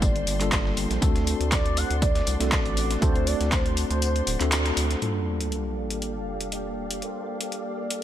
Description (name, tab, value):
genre	deep house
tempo	120 BPM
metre	4/4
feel	swing 54% on 16ths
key	G minor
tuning	A4 = 440 Hz
part	mellow horn-like synth lead	melody	0.0-8.0 s	C5 to F#5	-33 LUFS	right 1 dB	phaser, lush chorus, cassette tape, digital delay
part	soft string machine	sustained chords	0.0-8.0 s	Bb3 to A5	-36 LUFS	equal	ensemble chorus, sidechain pumping
part	mellow tine electric piano	stabs	0.0-8.0 s	G3 to A4	-30 LUFS	equal	medium stereo tremolo, sidechain pumping, low-pass filter, dub echo
part	round analog bass	bass	0.0-5.0 s	D1 to D2	-26 LUFS	equal	sidechain pumping
part	dusty soul sampler-style drum kit	drums	0.0-5.0 s	hi-hat, snare drum, tambourine	-36 LUFS	left 2 dB	overdrive, high-pass filter on perc, high-pass filter on snare, high-pass filter on hats
part	electronic kick drum	drums	0.0-3.6 s	none	-25 LUFS	equal	none
part	punchy analog drum machine	drums	0.0-8.0 s	handclaps, hi-hat	-29 LUFS	equal	none
part	rich symphonic violin section	texture	0.0-5.0 s	C5 to C6	-42 LUFS	left 1 dB	sidechain pumping
part	sub drop	sound effects	5.0-7.0 s	none	-32 LUFS	equal	none
room	light reverb, digital ambience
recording	none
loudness	-23 LUFS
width	side -11 dB against mid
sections	0.0-5.0 A section; 5.0-8.0 B section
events	kick drops out 4.0-5.0; band accent 4.5; impact 5.0-7.0; filter sweep on tine electric piano 5.0-8.0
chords	0.0 Gm9; 1.0 D7; 5.0 Gm9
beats	0.02 0.52 | 1.02 1.52 2.02 2.52 | 3.02 3.52 4.02 4.52 | 5.02 5.52 6.02 6.52 | 7.02 7.52 8.02